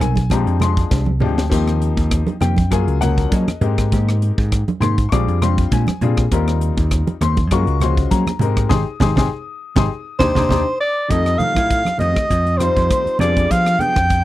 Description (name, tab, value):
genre	electric jazz fusion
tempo	100 BPM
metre	4/4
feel	swing 53% on 16ths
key	F mixolydian from 11.1 s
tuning	A4 = 440 Hz
part	clear baby grand piano	accompaniment	0.0-14.2 s	F3 to Eb6	-23 LUFS	left 8 dB	none
part	mellow electric guitar	stabs	0.0-14.0 s	Eb3 to Bb4	-25 LUFS	right 1 dB	wide subtle chorus
part	vintage slap bass	bass	0.0-14.2 s	Ab1 to Gb3	-18 LUFS	equal	none
part	crisp fusion drum kit	drums	0.0-14.2 s	hi-hat, kick drum, rim click, snare drum, splash cymbal, toms	-21 LUFS	equal	none
part	congas	percussion	0.0-14.1 s	none	-23 LUFS	right 4 dB	none
part	breathy soprano saxophone	melody	10.2-14.2 s	C5 to G5	-18 LUFS	equal	none
part	breathy mellow jazz flute	second line	10.2-14.2 s	C6 to G6	-26 LUFS	right 2 dB	none
room	little or no reverb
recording	dry, close 1970s-style studio recording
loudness	-15 LUFS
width	side -15 dB against mid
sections	0.0-11.1 A section; 11.1-14.2 B section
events	drum fill 0.9-1.5, 10.8; band accent 8.7-11.1; grand piano fill 9.9-11.1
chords	0.3 Bb13; 1.5 Eb6; 2.7 Gbmaj9; 3.6 Abmaj9; 5.1 Bb13; 6.3 Eb6; 7.5 Gbmaj9; 8.4 Abmaj9; 9.9 Ebmaj7; 11.1 F9; 13.2 G7b9/F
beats	0.31 0.91 | 1.51 2.11 2.71 3.31 | 3.92 4.51 5.11 5.71 | 6.31 6.91 7.51 8.11 | 8.71 9.31 9.91 10.51 | 11.11 11.71 12.30 12.90 | 13.50 14.10